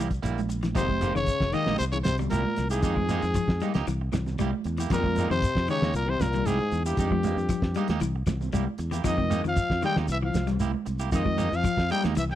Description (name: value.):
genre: afrobeat.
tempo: 116 BPM.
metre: 4/4.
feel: straight.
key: F minor.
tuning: A4 = 441 Hz.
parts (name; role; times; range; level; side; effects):
clean electric guitar; arpeggios; 0.0-12.3 s; C3 to G3; -32 LUFS; left 7 dB; none.
electric guitar at the edge of break-up; stabs; 0.0-12.3 s; G3 to G4; -34 LUFS; right 8 dB; warbly pitch drift.
fingered electric bass; bass; 0.0-12.4 s; F1 to F2; -29 LUFS; equal; none.
cloth-damped thuddy drum kit; drums; 0.1-12.4 s; hi-hat, kick drum, snare drum; -30 LUFS; equal; none.
shekere; percussion; 0.1-12.3 s; none; -34 LUFS; left 2 dB; none.
congas; percussion; 0.4-12.3 s; none; -34 LUFS; right 8 dB; none.
growling trumpet; melody; 0.8-12.4 s; G4 to G5; -29 LUFS; equal; none.
warm bass trombone; second line; 0.8-12.4 s; G2 to G3; -33 LUFS; left 7 dB; none.
room: studio reverb.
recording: dry, close 1970s-style studio recording.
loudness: -24 LUFS.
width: side -12 dB against mid.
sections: 0.8-12.4 A section.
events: none.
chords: 0.0 C7; 0.8 Fm11; 1.8 C7; 2.8 Fm11; 3.9 C7; 4.9 Fm11; 5.9 C7; 7.0 Fm11; 8.0 C7; 9.1 Fm11; 10.1 C7; 11.1 Fm11.